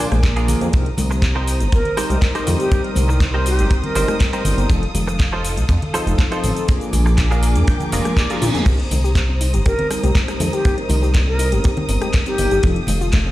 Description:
nu-disco, nu disco; 121 BPM; 4/4; straight; C minor; A4 = 439 Hz
mellow synth brass; accompaniment; 0.0-12.8 s; F3 to Bb4; -24 LUFS; equal; chorus, sidechain pumping, digital delay
warm symphonic violin section; sustained chords; 0.0-13.3 s; Ab4 to Eb6; -29 LUFS; equal; sidechain pumping
direct-recorded clean electric guitar; riff; 0.0-8.7 s; D4 to Ab5; -26 LUFS; right 2 dB; ensemble chorus, digital delay
chorused synth bass; bass; 0.0-13.3 s; F1 to Bb2; -18 LUFS; equal
house drum kit; drums; 0.1-13.2 s; crash cymbal, handclaps, hi-hat, rim click, shaker, toms; -27 LUFS; equal
congas; percussion; 0.1-13.0 s; -28 LUFS; left 2 dB
kick drum; drums; 0.2-13.2 s; -16 LUFS; equal
concert flute; melody; 1.7-4.2, 9.7-12.6 s; G4 to Bb4; -24 LUFS; equal; vintage 12-bit sampler grit, digital delay
reverse cymbal; sound effects; 7.9-8.7 s; -31 LUFS; right 4 dB
soft round pluck; arpeggios; 8.7-13.3 s; A3 to G4; -27 LUFS; left 4 dB; chorus, sidechain pumping, digital delay
little or no reverb; played on a big sound system in a bare room, stone room reverb; -15 LUFS; side -16 dB against mid
0.0-13.3 A section
clean electric guitar fill 7.2-8.7; reverse cymbal 7.9-8.7; drum fill 8.2-8.7
0.0 Bb7; 0.7 Cm7; 4.7 F7; 6.7 Bb7; 8.7 Cm7; 12.6 F7

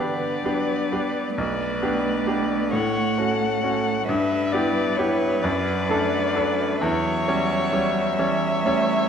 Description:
classical, slow romantic movement for piano quartet; 44 BPM (dotted quarters); 6/8; rubato; A4 = 440 Hz
muted violin; melody; 0.0-9.1 s; C#5 to F#5; -26 LUFS; left 4 dB
muted cello; second line; 0.0-9.1 s; D3 to A3; -29 LUFS; right 7 dB
muted violin; second line; 0.0-9.1 s; A4 to C#5; -30 LUFS; left 1 dB
bright grand piano; accompaniment; 0.0-9.1 s; B1 to C#5; -23 LUFS; equal
wet scoring stage reverb, RT60 2.0 s; dark, warm production; -20 LUFS; side -7 dB against mid
0.0-9.1 A section
0.0 G; 1.4 G/B; 2.7 F#m/A; 4.1 Em/G; 5.5 D/F#; 6.8 C#dim/E

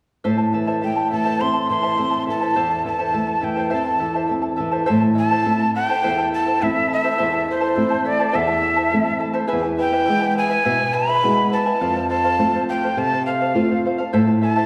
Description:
andean folk; 104 BPM; 4/4; straight; A harmonic minor; A4 = 440 Hz
charango; accompaniment; 0.2-14.7 s; E4 to A5; -26 LUFS; equal
flamenco guitar; accompaniment; 0.2-14.7 s; E2 to F4; -24 LUFS; equal
breathy bright quena; melody; 0.8-14.7 s; C5 to C6; -23 LUFS; equal
wet recital hall reverb, RT60 1.6 s; heard from further back in the room; -20 LUFS; mono
0.2-4.9 A section; 4.9-14.7 B section
0.2 Am; 9.5 E; 11.8 F; 14.1 Am

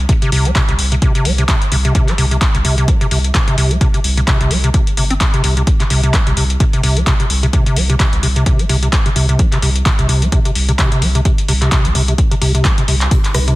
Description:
acid house; 129 BPM; 4/4; swing 56% on 16ths; C minor; A4 = 440 Hz
saturated sub bass; bass; 0.0-13.5 s; G1 to C2; -16 LUFS; equal; tube saturation, sidechain pumping
acid bass, square; riff; 0.1-13.6 s; C3 to C4; -17 LUFS; equal; overdrive, analog chorus, vintage 12-bit sampler grit
electro analog drum machine; drums; 0.1-13.6 s; handclaps, hi-hat, rim click; -19 LUFS; left 1 dB
electronic kick drum; drums; 0.1-13.2 s; -15 LUFS; equal
dark analog pad; sustained chords; 13.3-13.6 s; C4 to G4; -32 LUFS; right 2 dB
hi-hat; drums; 13.1-13.5 s; -33 LUFS; left 6 dB
digital ambience; dense, heavily limited modern master; -12 LUFS; side -18 dB against mid
0.0-13.6 A section
drum fill 12.6-13.1
0.0 C5

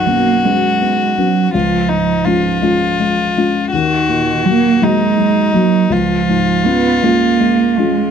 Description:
neoclassical piano and strings; 55 BPM (dotted quarters); 6/8; rubato; A4 = 444 Hz
rich violin; melody; 0.0-8.1 s; Eb4 to Gb4; -17 LUFS; left 4 dB
dark cello; second line; 0.0-8.1 s; Eb3 to Cb4; -15 LUFS; right 8 dB
felt-muted upright piano; accompaniment; 0.0-8.1 s; B1 to F#4; -16 LUFS; left 4 dB
light reverb; close, detailed microphones; -11 LUFS; side -7 dB against mid
0.0-8.1 A section
0.0 Bsus2; 1.5 Db; 3.7 Ebm; 5.9 Db

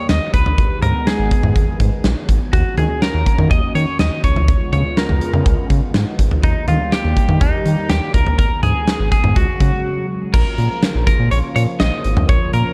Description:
synth-pop; 123 BPM; 4/4; straight; A4 = 442 Hz
twelve-string electric guitar; melody; 0.0-12.7 s; Eb4 to Eb5; -25 LUFS; equal; tape echo
phased analog pad; sustained chords; 0.0-12.7 s; Db3 to Ab4; -28 LUFS; equal; phaser, chorus
round analog bass; bass; 0.1-12.6 s; Ab1 to Eb3; -20 LUFS; equal
huge arena drum kit; drums; 0.1-12.6 s; crash cymbal, hi-hat, kick drum, snare drum, toms; -19 LUFS; equal
light reverb, small room ambience; dark, warm production; -16 LUFS; mono
0.0-10.3 A section; 10.3-12.7 B section
break 9.8-10.3
0.0 Eb; 0.6 Abm; 2.5 Ebm7; 4.2 Db7; 6.4 Eb; 8.4 Abm; 9.4 Dbsus4; 10.3 Bbm

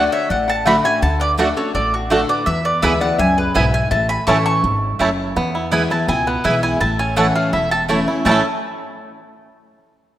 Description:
bluegrass; 166 BPM; 4/4; straight; A major; A4 = 440 Hz
mandolin; melody; 0.0-8.4 s; F#4 to C#6; -20 LUFS; right 1 dB
lap resonator guitar; second line; 0.0-5.2 s; D4 to A5; -24 LUFS; left 4 dB
picked steel-string acoustic guitar; accompaniment; 0.0-8.4 s; E2 to F#4; -21 LUFS; left 2 dB
bluegrass banjo; arpeggios; 0.0-8.5 s; A3 to A4; -24 LUFS; right 2 dB
mandolin; stabs; 0.0-8.4 s; A3 to A5; -22 LUFS; right 3 dB
upright bass; bass; 0.0-8.4 s; E1 to E2; -24 LUFS; equal
moderate lush hall reverb, RT60 2.4 s; rough home demo mix; -15 LUFS; side -12 dB against mid
0.0-5.4 A section; 5.4-8.3 B section; 8.3-9.7 C section
0.0 D; 2.5 E; 3.9 A; 5.4 E; 6.8 A

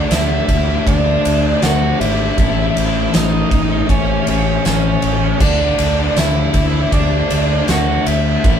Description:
quiet-loud alternative rock; 79 BPM; 4/4; straight; A4 = 440 Hz
dark smooth lead guitar; melody; 0.0-8.6 s; C#4 to F#5; -20 LUFS; right 5 dB; overdrive
thick fuzz guitar; riff; 0.0-8.6 s; A2 to A4; -19 LUFS; left 7 dB; distortion
overdriven fingered electric bass; bass; 0.1-8.6 s; G#1 to D2; -19 LUFS; equal
oversized low-tuned drum kit; drums; 0.1-8.6 s; crash cymbal, kick drum, ride cymbal, snare drum; -17 LUFS; equal
moderate studio reverb, RT60 0.6 s; band playing live in one room; -13 LUFS; side -8 dB against mid
0.0-8.6 A section
0.0 Dadd9; 2.4 A; 5.4 Dadd9

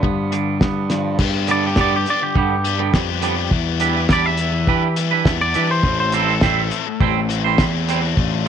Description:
indie rock; 103 BPM; 4/4; straight; A minor; A4 = 440 Hz
twangy electric guitar; melody; 0.0-7.3 s; G4 to E5; -22 LUFS; equal; slapback echo
biting overdriven guitar; riff; 0.0-8.5 s; G2 to G4; -24 LUFS; left 16 dB
twangy electric guitar; riff; 0.0-8.5 s; G2 to C5; -22 LUFS; right 14 dB; lush chorus, slapback echo
fuzz picked electric bass; bass; 0.0-8.5 s; A1 to E3; -22 LUFS; equal; overdrive
cloth-damped thuddy drum kit; drums; 0.0-8.3 s; crash cymbal, hi-hat, kick drum, snare drum; -19 LUFS; equal
studio ambience; 1960s-style stereo with parts hard left and right; -16 LUFS; side -8 dB against mid
0.0-1.2 A section; 1.2-8.5 B section
clean electric guitar solo 1.2-8.5
0.0 G7; 1.2 G; 3.5 Em7; 5.8 Am7

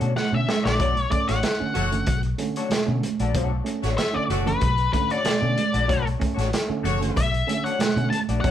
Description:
funk; 94 BPM; 4/4; straight; B minor; A4 = 440 Hz
clean electric guitar; accompaniment; 0.0-8.5 s; A3 to D5; -31 LUFS; left 6 dB; wah, spring reverb
barky tine electric piano; stabs; 0.0-8.5 s; B2 to C#4; -30 LUFS; right 4 dB
vintage muted fingered electric bass; bass; 0.0-8.5 s; F#1 to B2; -25 LUFS; equal
crunchy breakbeat drum kit; drums; 0.0-8.5 s; hi-hat, kick drum, snare drum; -27 LUFS; equal
octave-fuzz lead guitar; melody; 0.2-8.5 s; B4 to A5; -26 LUFS; left 3 dB; distortion
congas; percussion; 0.2-8.3 s; -31 LUFS; right 7 dB
clear horn section; second line; 1.3-7.3 s; A3 to D5; -31 LUFS; left 1 dB
moderate studio reverb, RT60 0.8 s; band playing live in one room; -21 LUFS; side -10 dB against mid
0.0-8.5 A section
lead electric guitar solo 0.0-8.5; drum fill 0.2-0.8
0.0 Bm9

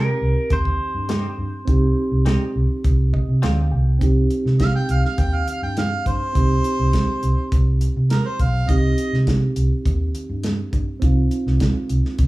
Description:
straight-eighth soul blues; 103 BPM; 4/4; straight; C minor; A4 = 443 Hz
electric guitar at the edge of break-up; melody; 0.0-3.4 s; Bb4 to C5; -27 LUFS; equal
mellow reed electric piano; accompaniment; 0.0-12.3 s; C4 to G5; -26 LUFS; right 2 dB; fast tremolo
direct-recorded clean electric guitar; stabs; 0.0-3.6 s; G3 to G4; -32 LUFS; left 4 dB; harmonic tremolo
vintage muted fingered electric bass; bass; 0.0-12.3 s; B1 to C3; -20 LUFS; equal
warm soul drum kit; drums; 0.5-12.3 s; hi-hat, kick drum, snare drum; -22 LUFS; equal
clear harmonica; second line; 4.6-9.3 s; Bb4 to G5; -25 LUFS; right 1 dB; overdrive
moderate large studio reverb, RT60 0.9 s; band playing live in one room, small room ambience; -17 LUFS; side -19 dB against mid
0.0-4.0 A section; 4.0-12.3 B section
reed electric piano fill 2.8-4.0; harmonica solo 4.0-12.3
0.0 Cm

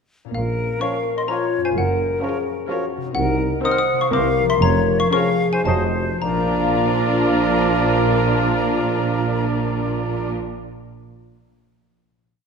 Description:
cinematic, playful, whimsical film cue; 107-129 BPM; 3/4; straight; A4 = 440 Hz
concert harp; arpeggios; 0.2-10.9 s; Gb2 to F5; -28 LUFS; left 7 dB
xylophone with plastic mallets; melody; 0.3-10.6 s; F5 to F6; -26 LUFS; left 4 dB
bright silver concert flute; second line; 0.3-10.3 s; Bb4 to Bb5; -27 LUFS; left 2 dB
mellow tuba; bass; 0.3-10.3 s; F1 to C2; -27 LUFS; right 4 dB
muted studio cello section; bass; 0.3-10.3 s; F2 to C3; -28 LUFS; right 3 dB
muted studio double bass section; bass; 0.3-10.3 s; F1 to C2; -27 LUFS; right 4 dB
muted studio violin section; melody; 0.8-10.3 s; Bb4 to C5; -31 LUFS; left 6 dB
clear clarinet; second line; 0.8-10.3 s; Bb4 to C5; -31 LUFS; right 2 dB
mellow cor anglais; second line; 0.8-10.3 s; C5 to Eb5; -30 LUFS; right 3 dB
muted studio violin section; second line; 0.8-10.3 s; Eb4 to Gb4; -31 LUFS; left 2 dB
mellow bassoon; accompaniment; 0.8-10.3 s; Eb3 to Gb3; -29 LUFS; right 4 dB
muted studio viola section; accompaniment; 0.8-10.3 s; C4 to Eb4; -28 LUFS; equal
mellow French horn section; sustained chords; 0.8-10.3 s; F3 to C5; -24 LUFS; left 3 dB
wet concert hall reverb, RT60 1.8 s; -17 LUFS; side -5 dB against mid
0.3-6.2 A section; 6.2-9.6 final chord
slowing down 2.5-6.2
0.3 Bbm; 1.8 Gbmaj7; 3.2 Cm7b5; 4.1 C7; 4.6 Bbm/F; 5.7 F7b9; 6.2 Bb

